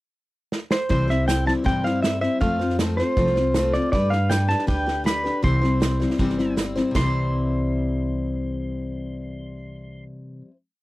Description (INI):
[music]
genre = honky-tonk and classic country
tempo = 158 BPM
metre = 4/4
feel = straight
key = C major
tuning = A4 = 440 Hz
[part]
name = unplugged drum kit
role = drums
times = 0.5-7.0 s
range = hi-hat, kick drum, snare drum, splash cymbal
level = -26 LUFS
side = right 1 dB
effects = none
[part]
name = pedal steel guitar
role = melody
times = 0.7-10.0 s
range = C5 to C6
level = -25 LUFS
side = right 1 dB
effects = none
[part]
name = picked steel-string acoustic guitar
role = accompaniment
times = 0.9-10.6 s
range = C3 to C5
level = -25 LUFS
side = left 2 dB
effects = none
[part]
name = upright bass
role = bass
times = 0.9-10.0 s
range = G1 to G2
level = -25 LUFS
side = equal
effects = none
[sound]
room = little or no reverb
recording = dry, close 1970s-style studio recording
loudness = -20 LUFS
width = side -18 dB against mid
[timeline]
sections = 0.0-0.9 pickup bar; 0.9-7.0 A section; 7.0-10.0 final chord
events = drum fill 0.5-0.9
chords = 0.0 N.C.; 0.9 C; 2.4 F; 3.9 G; 5.4 C